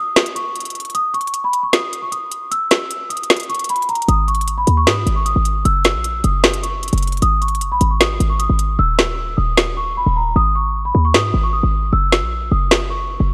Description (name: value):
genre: hip hop, trap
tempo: 153 BPM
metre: 4/4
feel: half-time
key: G# minor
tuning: A4 = 440 Hz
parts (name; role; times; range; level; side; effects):
- large celesta; melody; 0.0-13.3 s; A#5 to E6; -22 LUFS; equal; low-pass filter, delay
- trap drum kit; drums; 0.2-12.8 s; hi-hat, snare drum; -19 LUFS; equal; none
- short 808-style bass; bass; 4.1-13.3 s; D#1 to G#2; -20 LUFS; equal; none
room: light reverb, digital ambience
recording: none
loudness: -17 LUFS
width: mono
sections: 0.0-13.3 A section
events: break 0.0-4.1; hi-hats muted 8.8-10.4, 10.4-13.3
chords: 0.0 N.C.; 4.1 G#5; 5.7 F#7; 7.2 G#5; 8.8 C#madd9/D# (rootless); 10.4 G#5; 11.9 F#7